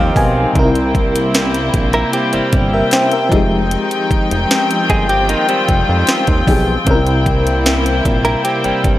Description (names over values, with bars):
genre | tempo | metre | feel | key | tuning
contemporary R&B | 76 BPM | 4/4 | straight | F minor | A4 = 441 Hz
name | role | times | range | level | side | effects
FM electric piano with tremolo | accompaniment | 0.0-9.0 s | C3 to Ab5 | -18 LUFS | left 1 dB | none
warm studio string section | sustained chords | 0.0-9.0 s | Eb3 to G5 | -18 LUFS | left 2 dB | sidechain pumping
direct-recorded clean electric guitar | arpeggios | 0.0-9.0 s | G3 to Bb4 | -19 LUFS | right 2 dB | tape echo
fat analog bass | bass | 0.0-9.0 s | F1 to F2 | -18 LUFS | equal | none
smooth R&B drum kit | drums | 0.2-9.0 s | hi-hat, kick drum, snare drum | -17 LUFS | equal | none
room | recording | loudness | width
digital ambience | dry, gritty hardware recording | -12 LUFS | side -14 dB against mid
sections
0.0-9.0 A section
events
FM electric piano fill 0.0-0.6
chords
0.0 Fm9; 0.6 C7; 3.3 Fm9; 6.9 C7